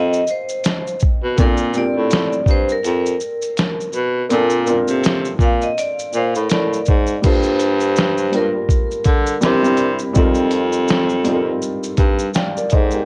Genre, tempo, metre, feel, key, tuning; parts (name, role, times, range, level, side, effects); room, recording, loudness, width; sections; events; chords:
lo-fi hip hop; 82 BPM; 4/4; swing 58% on 16ths; Bb major; A4 = 441 Hz
vibraphone with hard mallets; melody; 0.0-9.8 s; Bb4 to F5; -25 LUFS; equal; low-pass filter, cassette tape, analog delay
felt-muted upright piano; accompaniment; 0.0-13.1 s; G3 to G5; -24 LUFS; equal; cassette tape, low-pass filter
warm baritone saxophone; bass; 0.0-13.0 s; F2 to D3; -21 LUFS; equal
lo-fi sampler-style drum kit; drums; 0.1-13.1 s; crash cymbal, hi-hat, kick drum, shaker, snare drum; -20 LUFS; equal
light reverb; home recording on cassette; -18 LUFS; mono
0.0-7.2 A section; 7.2-13.1 B section
felt piano fill 12.0-13.1
0.0 F7sus4; 1.4 Bbmaj7; 7.2 Gm9; 9.4 C7; 10.2 F9sus4